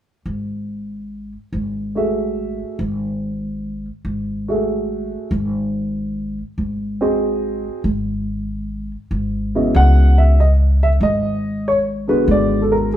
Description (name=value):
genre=jazz piano trio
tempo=95 BPM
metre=4/4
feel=swing 67% on 8ths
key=C# minor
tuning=A4 = 438 Hz
part: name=upright bass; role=bass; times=0.3-13.0 s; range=G#1 to C#2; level=-18 LUFS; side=equal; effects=none
part: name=dark upright piano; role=melody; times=2.0-13.0 s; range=C#3 to F#5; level=-18 LUFS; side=right 1 dB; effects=none
room=moderate stone room reverb, RT60 1.0 s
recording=band playing live in one room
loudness=-17 LUFS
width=side -11 dB against mid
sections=0.0-9.8 A section; 9.8-13.0 B section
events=none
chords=0.0 F#m9/G#; 9.8 C#m11; 12.3 G#m7b5